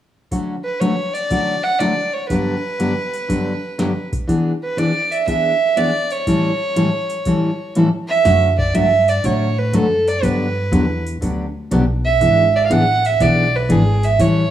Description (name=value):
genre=country, western swing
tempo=121 BPM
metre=4/4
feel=swing 68% on 8ths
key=D major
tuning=A4 = 440 Hz
part: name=picked steel-string acoustic guitar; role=accompaniment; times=0.3-14.4 s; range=G2 to A4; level=-19 LUFS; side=left 1 dB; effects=none
part: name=electro analog drum machine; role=drums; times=0.3-14.3 s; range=hi-hat, kick drum, snare drum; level=-26 LUFS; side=equal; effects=overdrive
part: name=warm fiddle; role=melody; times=0.6-14.5 s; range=G#4 to F#5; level=-18 LUFS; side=right 3 dB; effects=none
part: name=upright bass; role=bass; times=8.3-14.5 s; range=G#1 to A2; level=-20 LUFS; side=equal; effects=none
room=moderate echo chamber reverb, RT60 1.7 s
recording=small room ambience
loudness=-15 LUFS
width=side -11 dB against mid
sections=0.3-8.2 A section; 8.2-14.5 B section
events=none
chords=0.3 Dmaj7; 2.3 Gmaj7; 4.3 E7; 6.3 A7; 8.2 Dmaj7; 10.2 Gmaj7; 12.2 E7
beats=| 0.32 0.81 1.31 1.80 | 2.30 2.80 3.29 3.79 | 4.28 4.78 5.28 5.77 | 6.27 6.76 7.26 7.75 | 8.25 8.74 9.24 9.73 | 10.23 10.72 11.22 11.71 | 12.21 12.71 13.20 13.70 | 14.19